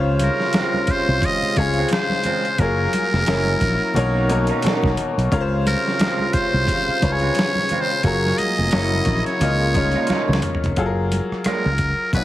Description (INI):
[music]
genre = R&B, neo-soul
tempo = 88 BPM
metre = 4/4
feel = swing 57% on 16ths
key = Db major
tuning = A4 = 439 Hz
[part]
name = bright upright piano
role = accompaniment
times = 0.0-12.2 s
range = Bb2 to Eb5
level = -24 LUFS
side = left 3 dB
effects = plate reverb
[part]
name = clear symphonic string section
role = sustained chords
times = 0.0-10.8 s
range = Cb3 to F5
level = -32 LUFS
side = equal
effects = none
[part]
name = warm horn section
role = stabs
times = 0.0-10.4 s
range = Bb2 to Ab4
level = -28 LUFS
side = right 3 dB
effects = plate reverb
[part]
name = fingered electric bass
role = bass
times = 0.0-12.2 s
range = F1 to Db2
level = -21 LUFS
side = equal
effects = none
[part]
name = trumpet with metal mute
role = melody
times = 0.2-12.2 s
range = Bb4 to Eb5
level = -23 LUFS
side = equal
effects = plate reverb
[part]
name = dusty soul sampler-style drum kit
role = drums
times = 0.2-12.2 s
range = hi-hat, kick drum, rim click, snare drum, toms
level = -24 LUFS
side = equal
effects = overdrive
[part]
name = congas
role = percussion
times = 0.2-12.2 s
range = none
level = -30 LUFS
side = right 1 dB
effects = none
[part]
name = electric guitar through a small old amp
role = second line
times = 0.6-11.7 s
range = Ab3 to Bb4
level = -28 LUFS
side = right 5 dB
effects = plate reverb
[sound]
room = moderate studio reverb, RT60 0.8 s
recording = heavily compressed radio sound, vinyl crackle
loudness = -17 LUFS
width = side -14 dB against mid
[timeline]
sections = 0.0-10.8 A section; 10.8-12.2 B section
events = drum fill 10.1-10.8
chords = 0.0 Dbmaj7; 2.6 Gbmaj9; 3.3 Gb7; 4.0 Cbmaj9; 5.3 Dbmaj7; 8.0 Gbmaj9; 8.7 Gb7; 9.4 Db69; 10.8 Gbmaj9